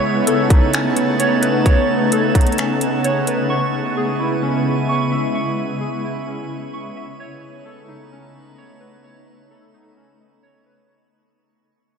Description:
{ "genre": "hip hop, atmospheric cloud-rap", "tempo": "130 BPM", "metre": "4/4", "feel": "half-time", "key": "unclear", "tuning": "A4 = 440 Hz", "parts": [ { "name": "shimmering ambient pad", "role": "sustained chords", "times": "0.0-10.9 s", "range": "C#3 to E4", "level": "-20 LUFS", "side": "equal", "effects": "chorus, built-in reverb, sidechain pumping" }, { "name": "warbly lo-fi synth keys", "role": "arpeggios", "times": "0.0-10.9 s", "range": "C#4 to C#6", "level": "-22 LUFS", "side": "equal", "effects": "chorus, low-pass filter, ping-pong delay" }, { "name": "drifting glass-harmonics texture", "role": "texture", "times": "0.0-10.9 s", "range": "D#4 to A5", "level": "-27 LUFS", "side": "right 4 dB", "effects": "chorus, built-in reverb" }, { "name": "trap drum kit", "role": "drums", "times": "0.3-3.4 s", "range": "finger snaps, hi-hat, kick drum", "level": "-16 LUFS", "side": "equal", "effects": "none" } ], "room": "light reverb, digital ambience", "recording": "none", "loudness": "-16 LUFS", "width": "side -6 dB against mid", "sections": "0.0-10.9 A section", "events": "fade-out 0.0-10.9; break 2.6-3.5", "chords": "0.0 B9; 3.5 E6; 7.2 B9", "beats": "0.27 0.73 1.20 | 1.66 2.12 2.58 3.04 | 3.50 3.96 4.43 4.89 | 5.35 5.81 6.27 6.73 | 7.20 7.66 8.12 8.58 | 9.04 9.50 9.96 10.43" }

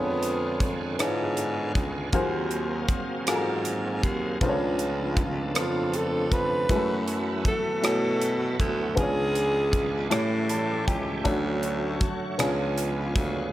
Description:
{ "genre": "slow gospel", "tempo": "53 BPM (dotted quarters)", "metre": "6/8", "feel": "straight", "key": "unclear", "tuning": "A4 = 444 Hz", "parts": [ { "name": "breathy tenor saxophone", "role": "melody", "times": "0.0-0.7, 5.6-10.1 s", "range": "B3 to B4", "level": "-28 LUFS", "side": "equal", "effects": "slapback echo" }, { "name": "warm upright piano", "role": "accompaniment", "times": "0.0-13.5 s", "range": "A2 to A5", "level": "-29 LUFS", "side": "left 1 dB", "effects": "none" }, { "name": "bright tonewheel organ", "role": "sustained chords", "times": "0.0-13.5 s", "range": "C#3 to E#5", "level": "-34 LUFS", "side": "right 2 dB", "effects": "chorus vibrato, slow rotary speaker" }, { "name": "dark French horn section", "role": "sustained chords", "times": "0.0-13.5 s", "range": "C#3 to C#5", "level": "-39 LUFS", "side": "right 1 dB", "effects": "none" }, { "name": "clear baritone saxophone", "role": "bass", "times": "0.0-13.5 s", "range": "C#2 to B2", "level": "-30 LUFS", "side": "equal", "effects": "none" }, { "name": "crisp fusion drum kit", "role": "drums", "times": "0.2-13.3 s", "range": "hi-hat, kick drum, rim click", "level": "-29 LUFS", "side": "equal", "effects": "none" } ], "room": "light reverb, studio reverb", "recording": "none", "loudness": "-24 LUFS", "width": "side -14 dB against mid", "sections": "0.0-13.5 A section", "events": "upright piano fill 10.1-11.2", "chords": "0.0 C#7b9/E#; 2.1 G#13/D#; 4.4 C#7b9b13; 6.7 F#m11; 9.0 C#7b9; 10.1 A7; 11.2 Dmaj7; 12.4 C#7b9", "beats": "0.99 | 2.13 3.27 | 4.41 5.55 | 6.69 7.83 | 8.97 10.11 | 11.25 12.39" }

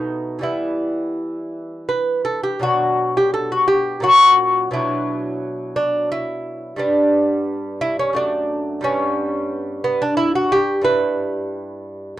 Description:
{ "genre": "classical, baroque-style dance for lute", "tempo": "82-90 BPM", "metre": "3/4", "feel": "rubato", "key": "B minor", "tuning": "A4 = 440 Hz", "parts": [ { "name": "lute", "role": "solo", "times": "0.0-12.2 s", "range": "F#2 to B4", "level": "-17 LUFS", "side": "equal", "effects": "none" } ], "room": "little or no reverb", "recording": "dry, close 1970s-style studio recording", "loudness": "-17 LUFS", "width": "side -14 dB against mid", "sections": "0.0-2.6 A section; 2.6-12.2 A section", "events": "none", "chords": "0.4 Em; 2.6 Bm; 4.0 F#/A#; 4.7 Bm; 6.8 G; 8.2 D/F#; 8.8 G; 10.9 Em/G", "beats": "| 0.44 1.16 1.89 | 2.61 3.33 4.03 | 4.73 5.42 6.11 | 6.79 7.47 8.15 | 8.83 9.51 10.18 | 10.85 11.53" }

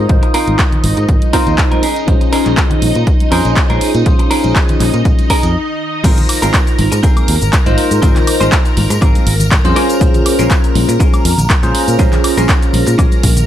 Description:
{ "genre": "filtered disco house", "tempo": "121 BPM", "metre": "4/4", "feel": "swing 54% on 16ths", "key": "Bb minor", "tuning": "A4 = 440 Hz", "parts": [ { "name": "bell-like tine electric piano", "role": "accompaniment", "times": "0.0-13.2 s", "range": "Db4 to C5", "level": "-17 LUFS", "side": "equal", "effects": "phaser, sidechain pumping, low-pass filter" }, { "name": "string machine, full ensemble", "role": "sustained chords", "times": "0.0-13.5 s", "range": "Eb4 to Bb5", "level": "-21 LUFS", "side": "equal", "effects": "phaser, ensemble chorus, sidechain pumping, low-pass filter" }, { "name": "fingered electric bass", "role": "bass", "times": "0.0-13.5 s", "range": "Ab1 to Bb2", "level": "-15 LUFS", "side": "equal", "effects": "tube saturation, sidechain pumping, low-pass filter" }, { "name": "electronic kick drum", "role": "drums", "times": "0.1-13.3 s", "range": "none", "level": "-13 LUFS", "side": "equal", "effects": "none" }, { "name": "house drum kit", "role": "drums", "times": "0.1-13.5 s", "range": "crash cymbal, handclaps, hi-hat, shaker, woodblock", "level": "-19 LUFS", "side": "equal", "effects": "overdrive, sidechain pumping on hats, sidechain pumping on cymbals, sidechain pumping on perc" }, { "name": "tambourine and congas", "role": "percussion", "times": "0.1-13.5 s", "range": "none", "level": "-24 LUFS", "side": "left 2 dB", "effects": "sidechain pumping on perc, low-pass filter on perc" }, { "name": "clean electric guitar", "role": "riff", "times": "0.2-13.3 s", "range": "C4 to C5", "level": "-20 LUFS", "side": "equal", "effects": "vintage 12-bit sampler grit, sidechain pumping, low-pass filter" } ], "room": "little or no reverb", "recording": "none", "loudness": "-10 LUFS", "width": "side -11 dB against mid", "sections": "0.0-6.0 A section; 6.0-13.5 B section", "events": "break 5.5-6.0; drop 6.0-13.5", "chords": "0.0 Ab69; 1.8 Bbm7; 6.0 Ab69; 9.8 Bbm7", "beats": "| 0.09 0.59 1.08 1.58 | 2.08 2.57 3.07 3.56 | 4.06 4.56 5.05 5.55 | 6.04 6.54 7.04 7.53 | 8.03 8.52 9.02 9.52 | 10.01 10.51 11.00 11.50 | 11.99 12.49 12.99" }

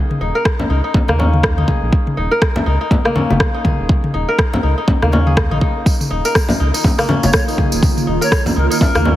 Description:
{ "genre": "afro house", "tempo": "122 BPM", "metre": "4/4", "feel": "swing 58% on 16ths", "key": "unclear", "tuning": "A4 = 440 Hz", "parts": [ { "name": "kora", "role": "arpeggios", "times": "0.0-9.2 s", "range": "Bb3 to Bb4", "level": "-21 LUFS", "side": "left 1 dB", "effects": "sidechain pumping, tape echo" }, { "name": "afro-pop drum kit", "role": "drums", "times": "0.1-9.0 s", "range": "rim click, toms", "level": "-21 LUFS", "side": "left 1 dB", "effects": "none" }, { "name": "round analog bass", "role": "bass", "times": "0.2-9.2 s", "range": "Eb1 to Eb2", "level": "-17 LUFS", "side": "equal", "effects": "sidechain pumping" }, { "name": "electronic kick drum", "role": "drums", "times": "0.5-8.9 s", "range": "none", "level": "-16 LUFS", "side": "equal", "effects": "none" }, { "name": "congas", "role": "percussion", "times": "0.6-9.2 s", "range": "none", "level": "-20 LUFS", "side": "left 1 dB", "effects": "none" }, { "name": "ethereal airy pad", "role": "sustained chords", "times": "6.7-9.2 s", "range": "Eb3 to F4", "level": "-22 LUFS", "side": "right 2 dB", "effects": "ensemble chorus, built-in reverb, sidechain pumping" }, { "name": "tambourine", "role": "percussion", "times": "5.9-9.0 s", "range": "none", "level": "-25 LUFS", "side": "right 2 dB", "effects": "none" }, { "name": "bright reedy polished pan flute", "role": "melody", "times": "7.2-9.2 s", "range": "Bb4 to Db5", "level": "-23 LUFS", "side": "right 1 dB", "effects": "tape echo" } ], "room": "light reverb, small room ambience", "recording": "heavily compressed radio sound", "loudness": "-13 LUFS", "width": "side -14 dB against mid", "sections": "0.0-9.2 A section", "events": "none", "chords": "0.0 Eb7sus2", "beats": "0.45 0.94 1.44 | 1.93 2.42 2.91 3.40 | 3.89 4.39 4.88 5.37 | 5.86 6.35 6.84 7.34 | 7.83 8.32 8.81" }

